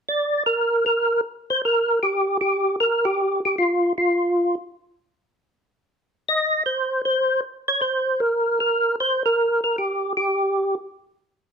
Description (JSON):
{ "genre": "jazz", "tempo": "155 BPM", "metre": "4/4", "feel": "swing 64% on 8ths", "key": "unclear", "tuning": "A4 = 440 Hz", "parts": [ { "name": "percussive tonewheel organ", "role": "solo", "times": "0.1-10.8 s", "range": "F4 to Eb5", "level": "-19 LUFS", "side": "equal", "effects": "slow rotary speaker, chorus vibrato" } ], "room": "moderate studio reverb, RT60 0.8 s", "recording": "none", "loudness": "-19 LUFS", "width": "side -6 dB against mid", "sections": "0.1-11.5 A section", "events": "none", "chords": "none", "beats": "| 0.06 0.45 0.84 1.22 | 1.61 2.00 2.39 2.77 | 3.16 3.55 3.94 4.32 | 4.71 5.10 5.49 5.88 | 6.26 6.65 7.04 7.42 | 7.81 8.20 8.59 8.97 | 9.36 9.75 10.14 10.53" }